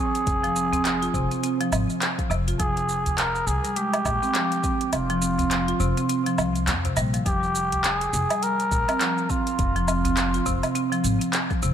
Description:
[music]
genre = organic downtempo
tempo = 103 BPM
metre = 4/4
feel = swing 59% on 16ths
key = F minor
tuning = A4 = 441 Hz
[part]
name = trumpet with cup mute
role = melody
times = 0.0-11.0 s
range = F4 to Bb4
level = -27 LUFS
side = equal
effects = vintage 12-bit sampler grit, tape echo, shimmer reverb
[part]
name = marimba with medium hard mallets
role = arpeggios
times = 0.0-11.7 s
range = C3 to F4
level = -26 LUFS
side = right 1 dB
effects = tape echo, shimmer reverb
[part]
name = deep house drum kit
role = drums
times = 0.1-11.7 s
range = handclaps, hi-hat, shaker, woodblock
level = -28 LUFS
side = right 1 dB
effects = overdrive
[part]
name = upright bass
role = bass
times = 0.3-11.7 s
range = F1 to F2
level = -28 LUFS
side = equal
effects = none
[part]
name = electronic kick drum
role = drums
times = 0.3-11.6 s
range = none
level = -28 LUFS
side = equal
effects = none
[part]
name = udu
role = percussion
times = 0.7-10.1 s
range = none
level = -32 LUFS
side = equal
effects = none
[sound]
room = light reverb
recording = none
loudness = -21 LUFS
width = side -9 dB against mid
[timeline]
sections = 0.0-7.3 A section; 7.3-11.7 A section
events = kick drops out 4.9-7.3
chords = 0.3 Fm; 2.6 Fmadd9; 4.9 Fsus2; 9.6 F5

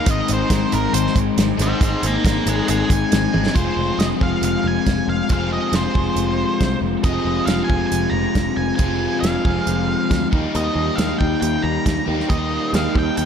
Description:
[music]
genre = classic rock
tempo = 137 BPM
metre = 4/4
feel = straight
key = F minor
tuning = A4 = 440 Hz
[part]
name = octave-fuzz lead guitar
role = melody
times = 0.0-13.3 s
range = Bb4 to C6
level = -25 LUFS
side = equal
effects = distortion
[part]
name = biting overdriven guitar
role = riff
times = 0.0-13.3 s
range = Ab2 to F4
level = -23 LUFS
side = left 10 dB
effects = spring reverb
[part]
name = raw garage guitar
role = riff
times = 0.0-13.3 s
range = Eb3 to Bb4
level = -27 LUFS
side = right 9 dB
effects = overdrive
[part]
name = picked electric bass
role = bass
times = 0.1-13.3 s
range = F1 to Eb2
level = -24 LUFS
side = right 1 dB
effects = none
[part]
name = damped 70s drum kit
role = drums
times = 0.1-13.3 s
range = hi-hat, kick drum, snare drum, toms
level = -21 LUFS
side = right 1 dB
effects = none
[part]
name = biting overdriven guitar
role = riff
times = 3.5-13.3 s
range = F2 to Eb4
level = -27 LUFS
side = right 1 dB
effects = none
[sound]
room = moderate scoring stage reverb, RT60 1.9 s, small room ambience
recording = big arena sound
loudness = -17 LUFS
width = side -7 dB against mid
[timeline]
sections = 0.0-3.5 A section; 3.5-13.3 B section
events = lead electric guitar solo 0.0-3.5; drum fill 3.3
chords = 0.1 Abadd9; 3.5 Fm; 10.3 Eb

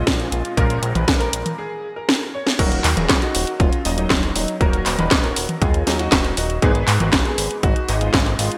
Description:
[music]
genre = italo disco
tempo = 119 BPM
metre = 4/4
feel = straight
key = Eb minor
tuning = A4 = 442 Hz
[part]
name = warm concert grand piano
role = melody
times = 0.0-8.6 s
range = Gb3 to Db5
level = -28 LUFS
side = equal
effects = analog chorus, shimmer reverb, digital delay
[part]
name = warm electric grand piano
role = stabs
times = 0.0-8.6 s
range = Ab2 to Eb5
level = -30 LUFS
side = equal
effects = ensemble chorus, shimmer reverb
[part]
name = chorused synth bass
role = bass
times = 0.0-8.5 s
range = Eb1 to Ab2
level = -25 LUFS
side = equal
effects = none
[part]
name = electronic kick drum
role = drums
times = 0.1-8.2 s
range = none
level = -22 LUFS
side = equal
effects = overdrive
[part]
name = house drum kit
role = drums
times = 0.1-8.6 s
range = crash cymbal, handclaps, hi-hat, snare drum, toms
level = -22 LUFS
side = equal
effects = overdrive, gated reverb
[sound]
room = light reverb, digital ambience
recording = bright 1980s-style digital production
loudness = -19 LUFS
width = mono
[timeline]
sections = 0.0-2.6 A section; 2.6-8.6 B section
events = break 1.6-2.6; drum fill 2.1-2.6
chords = 0.0 Bbm7; 2.6 Ebm; 6.6 Abm

